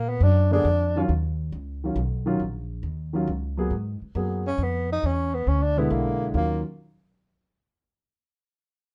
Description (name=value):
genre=jazz, small-group swing and bop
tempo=137 BPM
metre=3/4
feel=swing 67% on 8ths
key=Eb minor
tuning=A4 = 440 Hz
part: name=breathy tenor saxophone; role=melody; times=0.0-1.1, 4.5-6.6 s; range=Bb3 to Eb4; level=-28 LUFS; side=equal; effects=none
part: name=upright bass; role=bass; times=0.0-6.6 s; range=Bb1 to Bb2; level=-27 LUFS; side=equal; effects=none
part: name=dark grand piano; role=accompaniment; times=0.5-6.6 s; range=B2 to Ab4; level=-29 LUFS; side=equal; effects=none
room=light reverb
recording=none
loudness=-25 LUFS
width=mono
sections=0.0-3.7 A section; 3.7-6.4 B section; 6.4-7.7 C section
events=none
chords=0.0 Bb; 1.1 Ebm9; 3.7 Abm9; 5.0 E7; 6.4 Ebm9